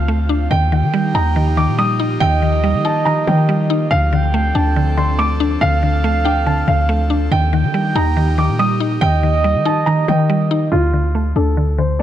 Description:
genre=hip hop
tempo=141 BPM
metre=4/4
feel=half-time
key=D phrygian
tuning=A4 = 438 Hz
part: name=dark baby grand piano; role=melody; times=0.0-12.0 s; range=F4 to Eb6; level=-21 LUFS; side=right 1 dB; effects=low-pass filter, digital delay
part: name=gliding portamento lead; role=second line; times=0.0-10.7 s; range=Eb5 to G5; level=-23 LUFS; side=right 5 dB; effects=chorus, digital delay
part: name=mallet-like synth pluck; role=accompaniment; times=0.0-12.0 s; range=D3 to Eb4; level=-19 LUFS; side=left 2 dB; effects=chorus, low-pass filter
part: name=airy breathy pad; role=sustained chords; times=0.0-10.7 s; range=D3 to A4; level=-26 LUFS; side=equal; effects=chorus
part: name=hard-hitting 808-style bass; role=bass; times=0.0-12.0 s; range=D2 to Eb3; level=-17 LUFS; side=equal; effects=none
room=light reverb, digital ambience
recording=none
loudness=-14 LUFS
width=side -11 dB against mid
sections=0.0-10.7 A section; 10.7-12.0 B section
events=filter sweep 10.7-12.0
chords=0.0 Dm7; 0.5 Ebadd9; 3.9 Dm7; 7.3 Ebadd9; 10.7 Dm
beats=0.08 | 0.51 0.93 1.36 1.78 | 2.21 2.64 3.06 3.49 | 3.91 4.34 4.76 5.19 | 5.61 6.04 6.46 6.89 | 7.32 7.74 8.17 8.59 | 9.02 9.44 9.87 10.29 | 10.72 11.15 11.57 12.00

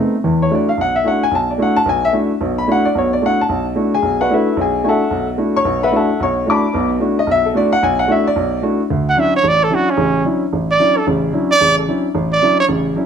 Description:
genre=jazz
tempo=222 BPM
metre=4/4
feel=swing 59% on 8ths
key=E mixolydian, D major from 8.9 s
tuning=A4 = 435 Hz
part: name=warm baby grand piano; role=accompaniment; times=0.0-13.1 s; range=A1 to D6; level=-14 LUFS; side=left 1 dB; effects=none
part: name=clear trumpet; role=melody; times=9.1-12.7 s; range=C#4 to F#5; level=-14 LUFS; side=right 3 dB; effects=none
room=moderate large studio reverb, RT60 1.2 s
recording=dark, warm production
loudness=-13 LUFS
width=side -7 dB against mid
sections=0.2-8.9 A section; 8.9-13.1 A section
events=trumpet solo 8.9-13.1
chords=0.2 E9sus4; 8.9 Dmaj9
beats=| 0.24 0.51 0.78 1.05 | 1.32 1.59 1.86 2.13 | 2.40 2.68 2.95 3.22 | 3.49 3.76 4.03 4.30 | 4.57 4.84 5.11 5.38 | 5.65 5.92 6.19 6.46 | 6.73 7.00 7.28 7.54 | 7.82 8.09 8.36 8.63 | 8.90 9.17 9.44 9.71 | 9.98 10.25 10.52 10.79 | 11.06 11.33 11.60 11.88 | 12.14 12.42 12.69 12.96

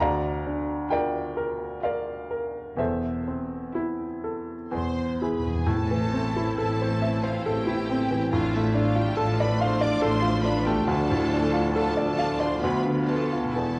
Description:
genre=classical, romantic movement for piano and orchestra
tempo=61-71 BPM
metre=3/4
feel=rubato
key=A minor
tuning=A4 = 441 Hz
part: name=clear baby grand piano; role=melody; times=0.0-13.8 s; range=D2 to Bb5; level=-28 LUFS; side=equal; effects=none
part: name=rich symphonic cello section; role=bass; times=0.0-13.8 s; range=D2 to D3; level=-34 LUFS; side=equal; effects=none
part: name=rich symphonic double bass section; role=bass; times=0.0-13.8 s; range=E1 to D2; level=-35 LUFS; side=equal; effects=none
part: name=warm symphonic violin section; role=melody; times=0.9-13.8 s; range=B4 to D6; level=-37 LUFS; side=equal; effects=none
part: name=rich symphonic violin section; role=second line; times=0.9-13.8 s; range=E4 to D5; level=-38 LUFS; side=equal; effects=none
part: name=clear symphonic viola section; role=accompaniment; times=0.9-13.8 s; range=B3 to F4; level=-36 LUFS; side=equal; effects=none
part: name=timpani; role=percussion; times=4.7-7.0, 13.5-13.8 s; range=E2 to A2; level=-36 LUFS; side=equal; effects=none
part: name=warm French horn section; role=sustained chords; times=5.7-13.8 s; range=E3 to D4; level=-37 LUFS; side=equal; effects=none
room=moderate concert hall reverb, RT60 2.4 s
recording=worn, warbling old tape, cassette tape, warbly pitch drift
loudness=-26 LUFS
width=mono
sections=0.0-5.7 A section; 5.7-13.8 B section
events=timpani fill 4.7-5.7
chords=0.0 Bb/D; 2.8 Am/E; 5.7 Am; 8.3 Dm/A; 10.9 Dm; 12.6 Bdim/D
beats=| 0.01 0.91 1.84 | 2.79 3.76 4.73 | 5.68 6.57 7.45 | 8.32 9.17 10.02 | 10.87 11.74 12.62 | 13.52

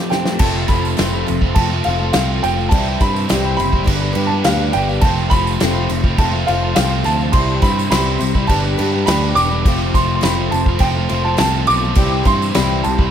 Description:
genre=folk rock and heartland rock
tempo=104 BPM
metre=4/4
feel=straight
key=unclear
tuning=A4 = 440 Hz
part: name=picked swing-style acoustic guitar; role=accompaniment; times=0.0-13.1 s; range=C3 to C5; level=-24 LUFS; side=left 5 dB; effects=none
part: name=crunchy overdriven guitar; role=riff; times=0.0-13.1 s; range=F2 to G4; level=-22 LUFS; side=right 1 dB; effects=none
part: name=dark grand piano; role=melody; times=0.1-13.1 s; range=F5 to D6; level=-21 LUFS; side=right 1 dB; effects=digital delay
part: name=bright tonewheel organ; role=sustained chords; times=0.1-13.1 s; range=B3 to E5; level=-31 LUFS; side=equal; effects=none
part: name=natural country drum kit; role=drums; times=0.1-13.1 s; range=crash cymbal, kick drum, snare drum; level=-19 LUFS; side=equal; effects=none
part: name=picked electric bass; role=bass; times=0.4-13.1 s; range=E1 to G2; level=-20 LUFS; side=equal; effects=none
part: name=tambourine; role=percussion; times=0.6-13.0 s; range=none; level=-35 LUFS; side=right 8 dB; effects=none
room=light reverb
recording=none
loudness=-14 LUFS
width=side -9 dB against mid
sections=0.4-13.1 A section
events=break 0.0-0.4; drum fill 0.0-0.4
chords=0.4 F; 2.7 C; 3.9 G; 5.0 F; 7.3 C; 8.5 G; 9.7 F; 12.0 C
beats=| 0.41 0.99 1.57 2.15 | 2.72 3.30 3.88 4.46 | 5.04 5.62 6.19 6.77 | 7.35 7.93 8.51 9.09 | 9.67 10.24 10.82 11.40 | 11.98 12.56

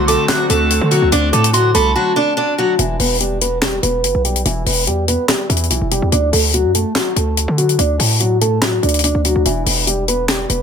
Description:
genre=hip hop, trap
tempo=144 BPM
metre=4/4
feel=half-time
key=E minor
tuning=A4 = 440 Hz
part: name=picked steel-string acoustic guitar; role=melody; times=0.0-10.6 s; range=E3 to D5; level=-17 LUFS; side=equal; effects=low-pass filter, ping-pong delay
part: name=soft synth bell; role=second line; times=0.0-2.7 s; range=A5 to F#6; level=-22 LUFS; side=right 4 dB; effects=chorus, ping-pong delay
part: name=warm analog pad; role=sustained chords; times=0.0-2.8 s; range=D3 to F#4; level=-23 LUFS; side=equal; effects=chorus
part: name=hard-hitting 808-style bass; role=bass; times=0.0-10.6 s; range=E1 to D3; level=-18 LUFS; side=equal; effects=none
part: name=tight funk drum kit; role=drums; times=0.1-10.6 s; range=handclaps, hi-hat, snare drum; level=-17 LUFS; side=left 3 dB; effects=none
room=light reverb, studio reverb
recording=none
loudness=-13 LUFS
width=side -7 dB against mid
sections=0.0-2.8 A section; 2.8-10.6 B section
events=break 2.0-2.8; filter sweep on steel-string acoustic guitar 2.8-10.6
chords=0.0 D7; 2.8 Em; 6.1 D; 9.5 Em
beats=0.29 0.70 | 1.12 1.54 1.95 2.37 | 2.79 3.20 3.62 4.04 | 4.45 4.87 5.29 5.70 | 6.12 6.54 6.95 7.37 | 7.79 8.20 8.62 9.04 | 9.45 9.87 10.29

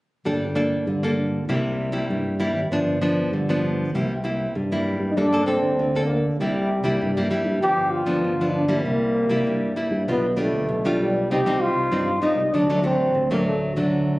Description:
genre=samba and choro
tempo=98 BPM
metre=4/4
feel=straight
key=G minor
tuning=A4 = 438 Hz
part: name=nylon-string guitar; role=accompaniment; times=0.3-14.2 s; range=G2 to A4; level=-23 LUFS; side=equal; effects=none
part: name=fingered electric bass with an envelope filter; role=bass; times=0.3-14.1 s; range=G1 to G2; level=-28 LUFS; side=right 1 dB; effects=none
part: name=breathy trombone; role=melody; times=5.1-14.2 s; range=F#3 to G4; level=-22 LUFS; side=equal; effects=plate reverb
room=light reverb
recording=recorded on a phone in the room, club reverb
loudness=-20 LUFS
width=side -20 dB against mid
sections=0.2-5.2 A section; 5.2-14.2 B section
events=none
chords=0.2 Gmadd9; 1.5 C7; 2.7 G7; 3.9 C7; 5.2 Gmadd9; 6.4 C7; 7.6 G7; 8.9 C7; 10.1 G7/B; 11.3 Cm; 12.5 D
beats=| 0.25 0.86 1.48 2.09 | 2.71 3.32 3.94 4.55 | 5.17 5.78 6.39 7.01 | 7.62 8.24 8.85 9.46 | 10.08 10.69 11.31 11.92 | 12.53 13.15 13.76

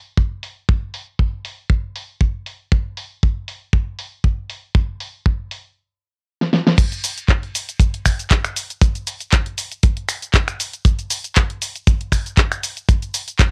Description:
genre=nu-disco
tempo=118 BPM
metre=4/4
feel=swing 54% on 16ths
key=none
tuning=none
part: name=kick drum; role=drums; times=0.2-13.5 s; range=none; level=-18 LUFS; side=equal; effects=small room ambience
part: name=pop drum kit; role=drums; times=0.4-13.5 s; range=cabasa, crash cymbal, finger snaps, handclaps, hi-hat, snare drum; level=-23 LUFS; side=equal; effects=low-pass filter on hats, small room ambience, low-pass filter on snare, low-pass filter on cymbals, low-pass filter on perc
room=little or no reverb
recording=home recording on cassette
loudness=-20 LUFS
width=mono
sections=0.0-6.8 A section; 6.8-13.5 B section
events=drum fill 6.4-6.8; drop 6.8-13.5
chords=none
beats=0.17 | 0.68 1.19 1.70 2.21 | 2.71 3.22 3.73 4.24 | 4.75 5.26 5.77 6.27 | 6.78 7.29 7.80 8.31 | 8.82 9.32 9.83 10.34 | 10.85 11.36 11.87 12.38 | 12.88 13.39

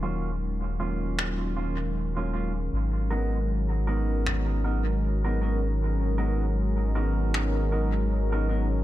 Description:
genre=ambient dub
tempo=78 BPM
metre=4/4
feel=swing 57% on 16ths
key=unclear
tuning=A4 = 440 Hz
part: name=warm analog pad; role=sustained chords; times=0.0-8.8 s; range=Eb3 to Bb4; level=-31 LUFS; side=left 1 dB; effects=chorus
part: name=clean electric guitar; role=stabs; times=0.0-8.7 s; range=Gb3 to Bb4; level=-34 LUFS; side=right 2 dB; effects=low-pass filter, dub echo
part: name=soft dub sub bass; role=bass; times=0.0-8.8 s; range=Eb1 to Ab1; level=-27 LUFS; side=equal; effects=none
part: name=organic electronic drum kit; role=drums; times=1.2-7.5 s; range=finger snaps, toms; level=-34 LUFS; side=left 1 dB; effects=dub echo
room=digital ambience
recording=none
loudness=-25 LUFS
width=side -14 dB against mid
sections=0.0-8.8 A section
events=none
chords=0.0 Ebm7; 2.7 Abm7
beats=0.42 1.19 1.96 | 2.73 3.50 4.27 5.04 | 5.80 6.57 7.34 8.11

